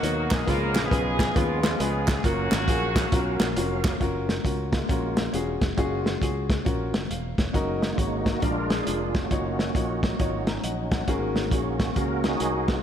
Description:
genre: uptempo gospel.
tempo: 136 BPM.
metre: 4/4.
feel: swing 63% on 8ths.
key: F# major.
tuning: A4 = 439 Hz.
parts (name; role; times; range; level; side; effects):
clear horn section; melody; 0.0-3.6 s; E#3 to A#4; -29 LUFS; equal; slapback echo.
warm upright piano; accompaniment; 0.0-12.7 s; G#2 to A#5; -30 LUFS; left 2 dB; slapback echo.
bright tonewheel organ; sustained chords; 0.0-12.8 s; B2 to E#5; -31 LUFS; right 2 dB; slow rotary speaker, chorus vibrato.
fingered electric bass; bass; 0.0-12.8 s; E1 to D#2; -31 LUFS; equal; none.
warm soul drum kit; drums; 0.0-12.8 s; hi-hat, kick drum, snare drum; -26 LUFS; equal; none.
group handclap; percussion; 0.3-3.9 s; none; -37 LUFS; right 4 dB; none.
room: moderate scoring stage reverb, RT60 2.0 s.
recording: big arena sound.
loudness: -23 LUFS.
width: side -9 dB against mid.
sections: 0.0-4.0 A section; 4.0-7.5 B section; 7.5-12.8 C section.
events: tonewheel organ solo 7.5-12.8; upright piano fill 10.2-11.1.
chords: 0.5 C#7; 2.2 F#maj7; 7.5 F#6; 8.4 A#7; 9.3 D#m9/F#; 11.1 G#9sus4.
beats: 0.04 | 0.48 0.92 1.36 1.80 | 2.24 2.68 3.13 3.57 | 4.01 4.45 4.89 5.33 | 5.78 6.22 6.66 7.10 | 7.54 7.98 8.43 8.87 | 9.31 9.75 10.19 10.64 | 11.08 11.52 11.96 12.41.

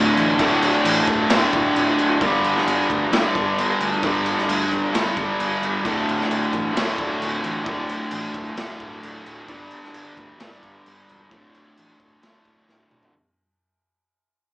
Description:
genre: hard rock.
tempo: 132 BPM.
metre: 4/4.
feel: straight.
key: unclear.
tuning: A4 = 440 Hz.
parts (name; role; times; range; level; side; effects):
cranked stack guitar; riff; 0.0-13.1 s; D2 to G3; -21 LUFS; equal; overdrive.
fuzz fingered electric bass; bass; 0.0-13.0 s; D1 to D2; -30 LUFS; equal; overdrive.
raw garage drum kit; drums; 0.2-13.1 s; crash cymbal, kick drum, snare drum, toms; -23 LUFS; equal; none.
room: moderate large studio reverb, RT60 0.9 s.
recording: band playing live in one room, small speaker sound.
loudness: -18 LUFS.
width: side -23 dB against mid.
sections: 0.0-13.1 A section.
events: fade-out 0.0-13.1; drum fill 12.7-13.1.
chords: 0.0 D5; 2.2 G5; 5.9 D5; 9.5 G5; 11.3 D5.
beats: | 0.40 0.85 1.31 1.76 | 2.22 2.67 3.13 3.58 | 4.03 4.49 4.94 5.40 | 5.85 6.31 6.76 7.21 | 7.67 8.12 8.58 9.03 | 9.49 9.94 10.40 10.85 | 11.31 11.77 12.22 12.68.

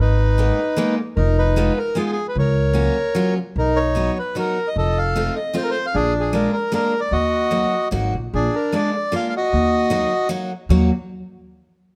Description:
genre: musette waltz.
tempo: 152 BPM.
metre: 3/4.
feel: straight.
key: Eb minor.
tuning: A4 = 440 Hz.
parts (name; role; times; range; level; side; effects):
accordion; melody; 0.0-10.3 s; D4 to F5; -23 LUFS; equal; none.
upright bass; bass; 0.0-10.9 s; F1 to Eb2; -22 LUFS; equal; none.
picked steel-string acoustic guitar; accompaniment; 0.4-10.9 s; Gb3 to F#4; -26 LUFS; equal; none.
room: light reverb.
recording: close, detailed microphones.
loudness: -20 LUFS.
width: mono.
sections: 0.0-8.3 A section; 8.3-10.7 B section; 10.7-11.9 C section.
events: none.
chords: 0.0 Abmadd9; 1.2 Fm7b5; 2.4 Gbmaj7/Db; 3.6 B; 4.8 F7; 5.9 Bb7; 7.1 Ebm; 8.3 Bb7; 9.5 Ebm.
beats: 0.39 0.78 | 1.17 1.57 1.96 | 2.36 2.75 3.15 | 3.56 3.96 4.37 | 4.76 5.16 5.56 | 5.95 6.34 6.73 | 7.12 7.52 7.92 | 8.33 8.73 9.12 | 9.52 9.91 10.30 | 10.70.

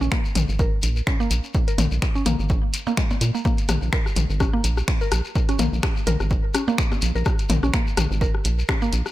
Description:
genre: minimal techno.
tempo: 126 BPM.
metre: 4/4.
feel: swing 56% on 16ths.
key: Bb minor.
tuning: A4 = 440 Hz.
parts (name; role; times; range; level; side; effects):
mallet-like synth pluck; riff; 0.0-8.9 s; Ab3 to Bb4; -28 LUFS; right 1 dB; chorus, cassette tape, sidechain pumping, digital delay.
rubbery square bass; bass; 0.0-9.0 s; Ab1 to Bb2; -22 LUFS; equal; sidechain pumping.
shekere; percussion; 0.0-9.1 s; none; -33 LUFS; left 5 dB; none.
electronic kick drum; drums; 0.1-8.8 s; none; -22 LUFS; equal; none.
punchy analog drum machine; drums; 0.1-9.0 s; finger snaps, hi-hat; -30 LUFS; right 1 dB; none.
techno drum kit; percussion; 0.4-9.1 s; percussion blips, rim click, toms; -27 LUFS; left 4 dB; ping-pong delay.
room: digital ambience.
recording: none.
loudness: -19 LUFS.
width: side -15 dB against mid.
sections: 0.0-9.1 A section.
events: none.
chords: none.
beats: 0.12 0.59 1.07 | 1.54 2.02 2.50 2.97 | 3.45 3.93 4.40 4.88 | 5.36 5.83 6.31 6.78 | 7.26 7.74 8.21 8.69.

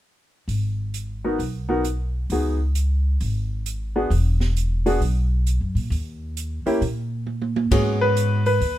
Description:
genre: jazz piano trio.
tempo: 133 BPM.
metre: 4/4.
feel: swing 65% on 8ths.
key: G# minor.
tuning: A4 = 440 Hz.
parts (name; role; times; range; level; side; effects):
upright bass; bass; 0.5-8.8 s; E1 to A#2; -22 LUFS; equal; none.
open jazz drum kit; drums; 0.5-8.8 s; hi-hat, kick drum, ride cymbal, snare drum, toms; -29 LUFS; right 3 dB; none.
clear concert grand piano; melody; 1.2-8.8 s; G#3 to B4; -22 LUFS; equal; none.
room: light reverb.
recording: minimal, uncompressed stereo recording.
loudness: -20 LUFS.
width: side -13 dB against mid.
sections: 0.5-7.7 A section; 7.7-8.8 B section.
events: drum fill 7.3-7.7.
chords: 0.5 G#m; 2.3 C#7sus4; 4.1 E5; 5.9 D#5; 7.7 G#m7.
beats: | 0.48 0.93 1.39 1.84 | 2.29 2.74 3.19 3.65 | 4.10 4.55 5.00 5.45 | 5.91 6.36 6.81 7.26 | 7.71 8.16 8.61.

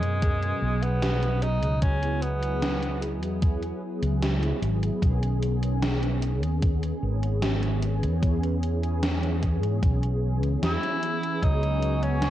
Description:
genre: vaporwave.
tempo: 75 BPM.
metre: 4/4.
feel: straight.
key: B major.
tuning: A4 = 441 Hz.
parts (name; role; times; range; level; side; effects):
warm tenor saxophone; melody; 0.0-3.0, 10.6-12.3 s; G#3 to E4; -30 LUFS; right 1 dB; tape echo.
mellow synth brass; accompaniment; 0.0-12.3 s; B2 to G#4; -30 LUFS; equal; ensemble chorus, tape echo.
mellow fretless electric bass; bass; 0.0-12.3 s; G#1 to G#2; -26 LUFS; equal; tube saturation.
gated 80s digital drum machine; drums; 0.0-12.3 s; hi-hat, snare drum; -31 LUFS; right 1 dB; gated reverb, gated reverb snare, overdrive, vintage 12-bit sampler grit.
electronic kick drum; drums; 0.2-11.6 s; none; -24 LUFS; equal; overdrive, vintage 12-bit sampler grit.
warbly tape-like pad; sustained chords; 11.6-12.3 s; B4 to C#6; -37 LUFS; equal; chorus, built-in reverb.
room: little or no reverb.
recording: cassette tape.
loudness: -23 LUFS.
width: side -13 dB against mid.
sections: 0.0-12.3 A section.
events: none.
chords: 0.0 C#7sus4; 1.8 F#9sus4/C#; 5.0 B69; 8.2 E6; 11.4 C#7sus4.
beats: 0.22 1.02 | 1.82 2.62 3.42 4.22 | 5.02 5.82 6.62 7.42 | 8.22 9.02 9.82 10.62 | 11.42 12.22.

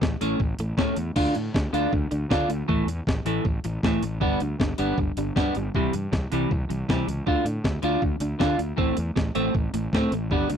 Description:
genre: indie rock.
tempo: 157 BPM.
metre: 4/4.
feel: straight.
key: D dorian.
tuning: A4 = 440 Hz.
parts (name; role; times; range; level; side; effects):
overdriven electric guitar; riff; 0.0-10.6 s; A2 to F4; -26 LUFS; right 1 dB; none.
fuzz fingered electric bass; bass; 0.0-10.6 s; G1 to D3; -29 LUFS; equal; overdrive.
breakbeat sampler-style drum kit; drums; 0.0-10.6 s; crash cymbal, hi-hat, kick drum, snare drum; -26 LUFS; equal; none.
room: little or no reverb.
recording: dry, close 1970s-style studio recording.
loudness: -22 LUFS.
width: side -8 dB against mid.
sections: 0.0-1.2 A section; 1.2-10.6 A section.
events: none.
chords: 0.0 A; 1.2 Dm; 2.7 A5; 4.2 G; 5.7 C; 7.3 Dm; 8.8 Am.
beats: 0.02 0.40 0.78 | 1.16 1.55 1.93 2.31 | 2.69 3.07 3.45 3.83 | 4.22 4.60 4.98 5.36 | 5.74 6.12 6.50 6.89 | 7.27 7.65 8.03 8.41 | 8.79 9.17 9.55 9.93 | 10.31.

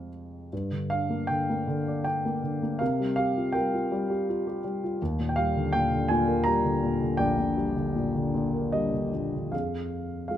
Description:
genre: classical, lyrical solo piano.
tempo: 72-83 BPM.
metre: 3/4.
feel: rubato.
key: unclear.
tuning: A4 = 440 Hz.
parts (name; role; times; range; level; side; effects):
dark concert grand piano; solo; 0.0-10.4 s; Bb1 to Bb5; -25 LUFS; equal; none.
room: light reverb.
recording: close, detailed microphones.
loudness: -25 LUFS.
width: side -11 dB against mid.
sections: 0.5-9.5 A section.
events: none.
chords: 0.0 Fm; 0.5 Gm; 2.8 C7sus4; 5.0 Ebmaj7; 9.5 Fm.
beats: | 0.52 1.29 2.05 | 2.81 3.55 4.28 | 5.00 5.73 6.46 | 7.20 7.95 8.74 | 9.53 10.30.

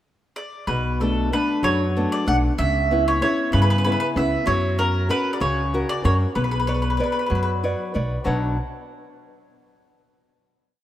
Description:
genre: italian folk, Italian serenade.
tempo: 63 BPM (dotted quarters).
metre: 6/8.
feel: straight.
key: B minor.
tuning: A4 = 440 Hz.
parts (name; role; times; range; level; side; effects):
mandolin; melody; 0.4-7.5 s; A4 to F#5; -24 LUFS; right 1 dB; none.
nylon-string guitar; accompaniment; 0.7-8.6 s; B2 to F#5; -24 LUFS; left 2 dB; none.
upright bass; bass; 0.7-8.6 s; B1 to G2; -23 LUFS; equal; none.
room: light reverb, studio reverb.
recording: rough home demo mix.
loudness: -19 LUFS.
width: side -12 dB against mid.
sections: 0.0-0.7 pickup bar; 0.7-8.3 A section; 8.3-10.1 final chord.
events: none.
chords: 0.0 N.C.; 0.7 Bm7; 2.6 C#m7b5; 4.5 F#; 6.4 Bmadd9.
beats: | 0.67 1.62 | 2.58 3.52 | 4.46 5.41 | 6.36 7.31 | 8.26.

